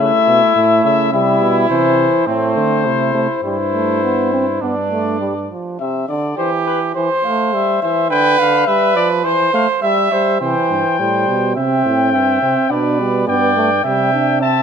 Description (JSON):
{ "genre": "classical, imitative canzona for brass ensemble", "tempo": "104 BPM", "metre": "4/4", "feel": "straight", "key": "C major", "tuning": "A4 = 443 Hz", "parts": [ { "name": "mellow trumpet", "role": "melody", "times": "0.0-14.6 s", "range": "B4 to A5", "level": "-17 LUFS", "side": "left 9 dB", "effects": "none" }, { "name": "mellow trumpet", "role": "second line", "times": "0.0-14.6 s", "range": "C4 to E5", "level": "-18 LUFS", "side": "right 6 dB", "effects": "none" }, { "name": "clear euphonium", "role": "accompaniment", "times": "0.0-14.6 s", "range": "C3 to D4", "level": "-19 LUFS", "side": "right 3 dB", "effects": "none" }, { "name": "warm bass trombone", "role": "bass", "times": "0.0-5.5, 10.4-14.6 s", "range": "G2 to D3", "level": "-21 LUFS", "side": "right 3 dB", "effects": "none" } ], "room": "moderate scoring stage reverb, RT60 1.8 s", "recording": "close, detailed microphones", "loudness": "-13 LUFS", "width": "side -7 dB against mid", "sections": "0.0-5.8 A section; 5.8-10.4 B section; 10.4-14.6 A section", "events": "none", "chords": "0.0 A; 1.1 C; 2.3 Am; 3.4 Gsus4; 4.6 G5; 5.8 C; 7.0 C/E; 8.1 Bdim/D; 9.2 C/E; 10.4 C; 12.7 G/B; 13.8 C", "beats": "0.56 | 1.13 1.70 2.27 2.86 | 3.44 4.03 4.62 5.21 | 5.80 6.38 6.96 7.53 | 8.10 8.67 9.24 9.82 | 10.41 10.99 11.56 12.13 | 12.71 13.28 13.85 14.41" }